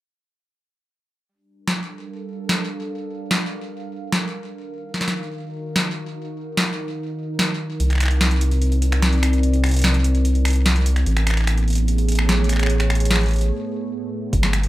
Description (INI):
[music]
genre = IDM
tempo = 147 BPM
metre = 4/4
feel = straight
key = G minor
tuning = A4 = 440 Hz
[part]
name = warbly tape-like pad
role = sustained chords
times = 1.7-14.7 s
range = A2 to F5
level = -27 LUFS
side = equal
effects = chorus, built-in reverb
[part]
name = electro analog drum machine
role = drums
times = 1.7-14.7 s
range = finger snaps, hi-hat, snare drum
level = -22 LUFS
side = equal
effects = overdrive, digital delay
[part]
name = round analog bass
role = bass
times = 7.8-14.7 s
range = G1 to C2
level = -18 LUFS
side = equal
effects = none
[part]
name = electronic kick drum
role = drums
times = 14.3-14.4 s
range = none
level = -22 LUFS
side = equal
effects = overdrive
[sound]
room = moderate studio reverb, RT60 0.5 s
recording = rough home demo mix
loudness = -18 LUFS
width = side -16 dB against mid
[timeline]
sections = 1.3-14.3 A section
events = filter sweep on ambient pad 1.3-14.3; break 13.5-14.3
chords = 1.3 Gm7; 4.5 Ebmadd9; 7.8 Cm7; 11.1 Amaj7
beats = | 1.27 1.68 2.08 2.49 | 2.90 3.31 3.72 4.12 | 4.53 4.94 5.35 5.76 | 6.17 6.57 6.98 7.39 | 7.80 8.21 8.62 9.02 | 9.43 9.84 10.25 10.66 | 11.06 11.47 11.88 12.29 | 12.70 13.11 13.51 13.92 | 14.33